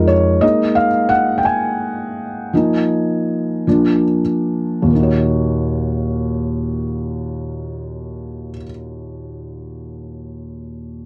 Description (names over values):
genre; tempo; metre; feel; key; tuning
pop; 45-59 BPM (dotted quarters); 6/8; straight; Eb minor; A4 = 441 Hz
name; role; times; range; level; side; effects
felt-muted upright piano; accompaniment; 0.0-11.1 s; Eb2 to Ab5; -19 LUFS; equal; none
room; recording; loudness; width
light reverb; dark, warm production; -18 LUFS; mono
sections
0.0-4.9 A section; 4.9-10.2 B section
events
felt piano solo 0.0-4.9; slowing down 0.4-4.9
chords
0.4 Absus2; 2.5 Bbsus4; 3.7 Bb; 4.9 Ebm7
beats
| 0.43 1.45 | 2.52 3.66 | 4.92 6.23 | 7.55 8.87